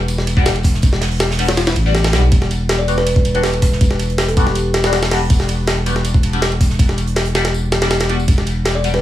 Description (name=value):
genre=drum and bass, jungle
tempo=161 BPM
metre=4/4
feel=straight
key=E minor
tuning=A4 = 440 Hz
part: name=saturated sub bass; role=bass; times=0.0-9.0 s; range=E1 to B1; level=-18 LUFS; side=equal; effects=none
part: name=jungle sampler-style drum kit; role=drums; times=0.1-9.0 s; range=hi-hat, kick drum, ride cymbal, snare drum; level=-16 LUFS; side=equal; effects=none
part: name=natural country drum kit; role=drums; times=0.1-8.9 s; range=hi-hat, snare drum, tambourine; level=-28 LUFS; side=right 2 dB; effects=high-pass filter on hats, high-pass filter on snare, high-pass filter on perc, high-pass filter on room
part: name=band-passed chord stab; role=stabs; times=0.4-8.9 s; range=G3 to F#4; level=-24 LUFS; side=left 3 dB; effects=phaser, wide subtle chorus, dub echo
part: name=kalimba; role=melody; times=2.8-4.8, 8.8-9.0 s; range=G4 to D5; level=-24 LUFS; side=equal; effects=dub echo
room=studio reverb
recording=studio ambience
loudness=-13 LUFS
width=side -13 dB against mid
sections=0.0-9.0 A section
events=none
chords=0.0 Em7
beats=0.08 0.46 | 0.83 1.20 1.57 1.95 | 2.32 2.69 3.07 3.44 | 3.81 4.18 4.56 4.93 | 5.30 5.67 6.05 6.42 | 6.79 7.17 7.54 7.91 | 8.28 8.66